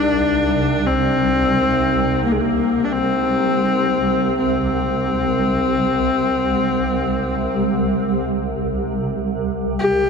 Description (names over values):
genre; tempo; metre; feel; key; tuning
world meditative, free-time meditation music; free time; none; none; C minor; A4 = 443 Hz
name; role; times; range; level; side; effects
bright viola; melody; 0.0-10.1 s; Ab3 to G4; -18 LUFS; left 3 dB; none
granular cloud pad; drone; 0.0-10.1 s; C2; -21 LUFS; right 2 dB; built-in reverb
bronze singing bowl; texture; 0.0-5.0 s; Eb4; -33 LUFS; right 8 dB; none
room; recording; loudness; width
moderate huge ambient reverb, RT60 8.2 s; dark, warm production; -16 LUFS; side -5 dB against mid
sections
0.0-10.1 A section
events
none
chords
none